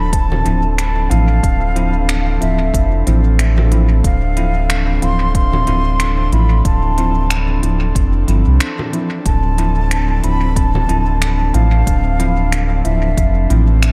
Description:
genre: ambient dub.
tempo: 92 BPM.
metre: 4/4.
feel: swing 58% on 16ths.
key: D minor.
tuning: A4 = 440 Hz.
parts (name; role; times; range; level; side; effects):
wooden flute; melody; 0.0-13.5 s; E5 to C6; -25 LUFS; equal; dub echo.
airy breathy pad; sustained chords; 0.0-13.9 s; E3 to A4; -26 LUFS; equal; chorus.
bell-like tine electric piano; stabs; 0.0-13.7 s; F3 to E4; -27 LUFS; equal; dub echo.
round analog bass; bass; 0.0-13.9 s; D1 to C2; -17 LUFS; equal; none.
electronic kick drum; drums; 0.1-13.3 s; none; -20 LUFS; equal; overdrive.
organic electronic drum kit; drums; 0.1-13.9 s; congas, finger snaps, hi-hat; -26 LUFS; equal; dub echo.
room: light reverb, digital ambience.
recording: none.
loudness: -15 LUFS.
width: mono.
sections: 0.0-13.9 A section.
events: none.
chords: 0.0 Dm9.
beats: 0.13 0.78 | 1.43 2.09 2.74 3.39 | 4.04 4.70 5.35 6.00 | 6.65 7.30 7.96 8.61 | 9.26 9.91 10.56 11.22 | 11.87 12.52 13.17 13.82.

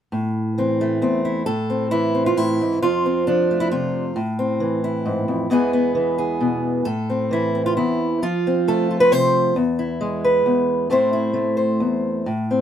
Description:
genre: folk, solo fingerstyle acoustic guitar.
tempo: 134 BPM.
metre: 3/4.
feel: rubato.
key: A harmonic minor.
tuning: A4 = 440 Hz.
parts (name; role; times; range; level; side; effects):
fingerpicked acoustic archtop guitar; solo; 0.1-12.6 s; E2 to C5; -18 LUFS; equal; none.
room: moderate small room reverb, RT60 0.5 s.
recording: band playing live in one room.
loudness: -18 LUFS.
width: side -9 dB against mid.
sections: 0.1-1.5 A section; 1.5-12.3 B section.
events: none.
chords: 0.1 Am; 2.8 F; 4.2 Am; 5.5 E; 6.9 Am; 8.2 F; 9.6 E; 10.9 Am.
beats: | 0.11 0.57 1.01 | 1.46 1.91 2.37 | 2.83 3.27 3.71 | 4.15 4.60 5.05 | 5.50 5.94 6.40 | 6.86 7.31 7.77 | 8.22 8.67 9.11 | 9.56 10.00 10.44 | 10.89 11.33 11.79 | 12.26.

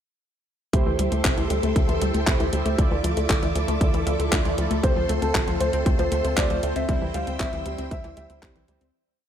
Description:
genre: italo disco.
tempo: 117 BPM.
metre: 4/4.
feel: straight.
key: unclear.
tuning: A4 = 440 Hz.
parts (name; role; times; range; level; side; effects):
string machine, full ensemble; sustained chords; 0.7-8.9 s; A4 to E6; -30 LUFS; equal; ensemble chorus.
analog pluck; arpeggios; 0.7-8.9 s; C3 to C4; -30 LUFS; left 5 dB; chorus, digital delay.
analog synth brass; stabs; 0.7-8.9 s; G3 to D5; -30 LUFS; right 4 dB; chorus, digital delay.
tight sequencer bass; bass; 0.7-8.9 s; A1 to D2; -27 LUFS; equal; none.
electronic kick drum; drums; 0.7-8.5 s; none; -23 LUFS; equal; none.
house drum kit; drums; 0.7-8.9 s; handclaps, hi-hat; -29 LUFS; left 1 dB; none.
dark grand piano; melody; 4.8-8.4 s; A4 to F5; -28 LUFS; equal; digital delay.
room: light reverb, digital ambience.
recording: none.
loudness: -20 LUFS.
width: side -9 dB against mid.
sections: 0.7-8.9 verse.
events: fade-out 6.2-8.9.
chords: 0.7 Am7; 2.8 Dmadd9; 4.8 F; 6.9 C.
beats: | 0.73 1.25 1.76 2.27 | 2.79 3.30 3.81 4.32 | 4.84 5.35 5.86 6.37 | 6.89 7.40 7.91 8.43.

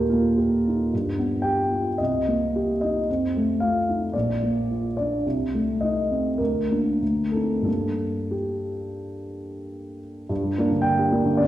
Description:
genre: classical, romantic character piece for solo piano.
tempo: 88-115 BPM.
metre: 4/4.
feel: rubato.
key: G minor.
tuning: A4 = 441 Hz.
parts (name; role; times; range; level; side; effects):
warm upright piano; solo; 0.0-11.5 s; Bb1 to G5; -22 LUFS; equal; none.
room: wet recital hall reverb, RT60 1.5 s.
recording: heard from further back in the room.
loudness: -21 LUFS.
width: side -13 dB against mid.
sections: 0.0-10.3 A section; 10.3-11.5 A section.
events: none.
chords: 0.0 Eb; 0.9 G7; 2.0 Cm7; 3.1 F7; 4.1 Bb; 5.2 Adim/C; 6.4 Bb/D; 7.0 D5; 7.7 Gm.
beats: 0.39 | 0.92 1.45 1.99 2.54 | 3.08 3.61 4.14 4.69 | 5.25 5.81 6.39 7.01 | 7.67 8.34 9.02 9.67 | 10.30 10.86 11.40.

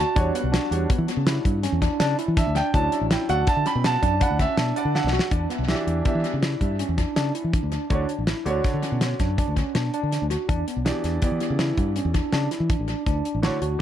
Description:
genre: progressive instrumental, band music in an uneven meter.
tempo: 163 BPM.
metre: 7/4.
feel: straight.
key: E dorian.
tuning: A4 = 440 Hz.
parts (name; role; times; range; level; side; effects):
clear grand piano; accompaniment; 0.0-13.8 s; D3 to B5; -28 LUFS; right 3 dB; tape echo.
tine electric piano; arpeggios; 0.0-13.8 s; B3 to F#4; -27 LUFS; equal; medium stereo tremolo, tape echo.
fingered electric bass; bass; 0.0-13.8 s; A1 to E3; -25 LUFS; equal; none.
damped 70s drum kit; drums; 0.2-13.7 s; hi-hat, kick drum, snare drum; -26 LUFS; equal; tape echo.
room: light reverb, studio reverb.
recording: echo-heavy mix.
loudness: -21 LUFS.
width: side -10 dB against mid.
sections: 0.0-5.3 A section; 5.3-13.8 B section.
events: grand piano solo 0.0-5.3; drum fill 4.9-5.3.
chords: 0.2 Em7; 2.7 Dmaj7; 5.3 Em7; 7.9 Dmaj7; 10.5 Em7; 13.1 Dmaj7.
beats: | 0.16 0.53 0.90 1.26 1.63 2.00 2.37 | 2.74 3.11 3.48 3.84 4.21 4.58 4.95 | 5.32 5.69 6.06 6.43 6.79 7.16 7.53 | 7.90 8.27 8.64 9.01 9.38 9.75 10.12 | 10.49 10.86 11.22 11.59 11.96 12.33 12.70 | 13.07 13.43 13.80.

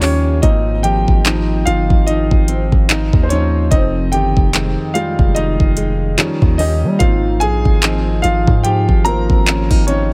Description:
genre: contemporary R&B.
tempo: 73 BPM.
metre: 4/4.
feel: swing 58% on 16ths.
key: Ab major.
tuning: A4 = 443 Hz.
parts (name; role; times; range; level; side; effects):
warm grand piano; accompaniment; 0.0-10.1 s; F3 to Bb5; -21 LUFS; equal; none.
fingerpicked plugged-in steel-string acoustic guitar; arpeggios; 0.0-10.1 s; F2 to G4; -23 LUFS; equal; digital delay.
long sustained 808-style bass; bass; 0.0-10.1 s; F1 to G3; -20 LUFS; equal; none.
smooth R&B drum kit; drums; 0.0-10.1 s; handclaps, hi-hat, kick drum; -17 LUFS; equal; none.
room: little or no reverb.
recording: none.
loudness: -15 LUFS.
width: mono.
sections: 0.0-10.1 A section.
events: grand piano solo 0.0-10.1.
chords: 0.4 Ab6; 3.7 Fm7; 6.2 Eb7; 7.0 Ab6.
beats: | 0.43 1.25 2.07 2.89 | 3.72 4.54 5.36 6.18 | 7.00 7.83 8.65 9.47.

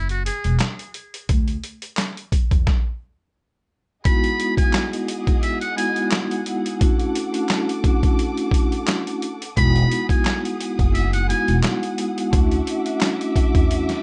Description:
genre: hip hop, boom-bap hip-hop.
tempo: 87 BPM.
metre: 4/4.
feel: swing 54% on 16ths.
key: E major.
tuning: A4 = 437 Hz.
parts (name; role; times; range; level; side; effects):
trumpet with metal mute; melody; 0.0-11.6 s; F#4 to B5; -28 LUFS; equal; high-pass filter, low-pass filter, tape echo.
upright bass; bass; 0.0-2.6, 9.6-13.9 s; E1 to E2; -23 LUFS; equal; none.
boom bap sampler-style drum kit; drums; 0.1-14.0 s; handclaps, hi-hat, kick drum, snare drum; -23 LUFS; equal; vintage 12-bit sampler grit.
vibraphone with soft mallets; accompaniment; 4.0-14.0 s; G#3 to F#4; -26 LUFS; equal; cassette tape, high-pass filter, low-pass filter.
warm studio string section; sustained chords; 4.0-14.0 s; G#4 to D#6; -35 LUFS; equal; high-pass filter, low-pass filter.
room: light reverb.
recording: nothing above 10.4 kHz.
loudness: -21 LUFS.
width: mono.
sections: 0.0-4.0 A section; 4.0-14.0 B section.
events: break 0.0-4.0; stop 2.7-4.0.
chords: 0.0 Esus2; 1.3 Dsus2; 4.0 Emaj9; 6.8 Dmaj9; 9.6 Emaj9; 12.3 Dmaj9.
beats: 0.60 | 1.29 1.98 2.67 3.36 | 4.05 4.74 5.43 6.12 | 6.81 7.50 8.19 8.88 | 9.57 10.26 10.95 11.64 | 12.32 13.02 13.71.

